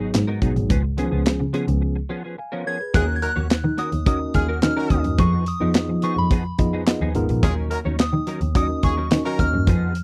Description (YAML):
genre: early-eighties boogie funk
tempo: 107 BPM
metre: 4/4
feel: straight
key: Eb minor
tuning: A4 = 439 Hz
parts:
  - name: tine electric piano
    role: accompaniment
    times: 0.0-9.7 s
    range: Eb3 to Ab5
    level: -28 LUFS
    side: equal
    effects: overdrive
  - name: semi-hollow electric guitar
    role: riff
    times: 0.0-10.0 s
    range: F3 to Db5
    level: -33 LUFS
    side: equal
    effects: ensemble chorus
  - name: warm double bass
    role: bass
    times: 0.0-9.9 s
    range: Ab1 to F3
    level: -25 LUFS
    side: equal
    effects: none
  - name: modern studio drum kit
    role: drums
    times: 0.1-10.0 s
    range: handclaps, hi-hat, kick drum, snare drum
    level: -22 LUFS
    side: equal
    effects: none
  - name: soft synth bell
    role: melody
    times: 2.7-10.0 s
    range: Cb6 to Ab6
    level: -30 LUFS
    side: equal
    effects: chorus
  - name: warm horn section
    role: second line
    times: 2.9-9.5 s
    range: Gb3 to Bb4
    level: -31 LUFS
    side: equal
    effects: slapback echo
room: little or no reverb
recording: dry, close 1970s-style studio recording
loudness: -21 LUFS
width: mono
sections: 0.0-2.9 A section; 2.9-10.0 B section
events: break 1.8-2.9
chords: 0.0 Abm7; 0.7 Db7; 2.9 Ebm7; 5.2 Fm7b5; 7.4 Ebm7